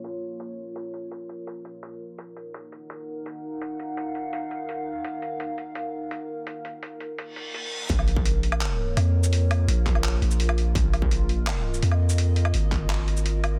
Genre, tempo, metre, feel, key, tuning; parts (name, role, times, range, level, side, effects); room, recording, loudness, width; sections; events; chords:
half-time drum and bass; 168 BPM; 4/4; half-time; Bb minor; A4 = 439 Hz
dark analog pad; sustained chords; 0.0-13.6 s; Bb3 to Gb5; -36 LUFS; equal; chorus, phaser, vintage 12-bit sampler grit, sidechain pumping
boom bap sampler-style drum kit; drums; 0.0-13.5 s; handclaps, hi-hat, shaker, woodblock; -35 LUFS; equal; low-pass filter on perc, low-pass filter on hats, low-pass filter on snare
reverse cymbal; sound effects; 7.3-7.9 s; -37 LUFS; equal
long sustained 808-style bass; bass; 7.9-13.6 s; Ab1 to F2; -24 LUFS; equal
electronic kick drum; drums; 7.9-12.8 s; -28 LUFS; equal; distortion
light reverb; dense, heavily limited modern master, low-pass filter; -26 LUFS; mono
0.0-7.9 A section; 7.9-13.6 B section
filter sweep 0.0-7.9; reverse cymbal 7.3-7.9; drop 7.9-13.6
0.0 Bbm; 2.2 Ebm; 7.9 Bbm